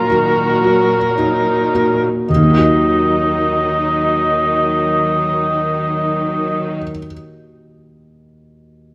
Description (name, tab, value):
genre	cinematic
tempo	55 BPM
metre	4/4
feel	rubato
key	Eb minor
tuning	A4 = 440 Hz
part	mellow cor anglais	melody	0.0-6.8 s	Bb4 to Eb5	-19 LUFS	equal	none
part	felt-muted upright piano	accompaniment	0.0-8.9 s	Eb2 to Eb5	-22 LUFS	equal	none
part	warm studio viola section	accompaniment	0.0-6.8 s	Eb3 to Gb4	-25 LUFS	equal	none
part	concert harp	arpeggios	0.0-7.0 s	Bb2 to Eb5	-25 LUFS	equal	none
part	rich studio cello section	bass	0.0-6.8 s	Bb2 to Eb3	-25 LUFS	equal	none
room	moderate scoring stage reverb, RT60 1.6 s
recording	close, detailed microphones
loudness	-16 LUFS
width	mono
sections	0.0-2.3 A section; 2.3-6.6 B section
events	slowing down 0.0-2.3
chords	0.0 Ebm/Bb; 2.3 Ebm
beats	0.10 1.17 | 2.29 3.37 4.47 5.55